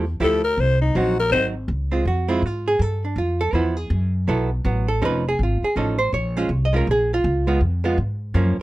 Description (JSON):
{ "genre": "jazz, small-group swing and bop", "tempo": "162 BPM", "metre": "3/4", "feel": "swing 63% on 8ths", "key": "unclear", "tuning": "A4 = 438 Hz", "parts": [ { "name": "archtop guitar, miked and amplified", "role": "accompaniment", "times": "0.0-8.6 s", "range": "F3 to Eb5", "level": "-22 LUFS", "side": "right 2 dB", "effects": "none" }, { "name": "upright bass", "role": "bass", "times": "0.0-8.6 s", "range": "F1 to Ab2", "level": "-22 LUFS", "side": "equal", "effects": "none" }, { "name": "growling alto saxophone", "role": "melody", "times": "0.2-1.5 s", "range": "Eb4 to C5", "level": "-19 LUFS", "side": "left 3 dB", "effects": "none" } ], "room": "light reverb", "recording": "close, detailed microphones", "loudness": "-19 LUFS", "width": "side -17 dB against mid", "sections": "0.0-1.7 A section; 1.7-8.6 A section", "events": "alto saxophone solo 0.0-1.7", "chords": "0.0 Fmaj9; 0.6 Ab7; 1.7 Dbmaj7; 2.8 G6; 3.9 Gbm7; 5.0 F7alt; 6.1 Bbm7; 7.2 Db7" }